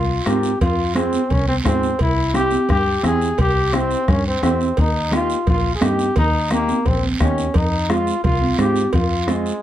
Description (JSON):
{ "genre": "latin, cumbia", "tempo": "173 BPM", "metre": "4/4", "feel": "straight", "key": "F minor", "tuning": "A4 = 440 Hz", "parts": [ { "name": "bright trombone", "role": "second line", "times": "0.0-9.6 s", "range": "Ab3 to Ab4", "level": "-21 LUFS", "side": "left 1 dB", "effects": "none" }, { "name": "fingered electric bass", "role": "bass", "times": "0.0-9.5 s", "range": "Bb1 to Ab2", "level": "-22 LUFS", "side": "equal", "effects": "none" }, { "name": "mellow electric guitar", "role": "accompaniment", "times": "0.3-9.5 s", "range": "Ab3 to Bb4", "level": "-23 LUFS", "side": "right 1 dB", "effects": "none" }, { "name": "bombo", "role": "percussion", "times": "0.3-9.5 s", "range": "none", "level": "-22 LUFS", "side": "left 1 dB", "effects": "none" }, { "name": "congas", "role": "percussion", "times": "0.3-9.5 s", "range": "none", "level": "-25 LUFS", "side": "right 3 dB", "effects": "none" }, { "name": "guiro", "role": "percussion", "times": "0.3-9.6 s", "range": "none", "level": "-33 LUFS", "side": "right 5 dB", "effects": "none" }, { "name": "cowbell and timbales", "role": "percussion", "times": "0.6-9.1 s", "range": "none", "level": "-29 LUFS", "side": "right 4 dB", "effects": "none" } ], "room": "light reverb", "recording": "close, detailed microphones", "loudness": "-16 LUFS", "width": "side -12 dB against mid", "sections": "0.0-9.6 A section", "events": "trombone solo 0.0-9.6", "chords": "0.0 Fm; 2.0 C; 4.8 Eb; 7.6 Fm" }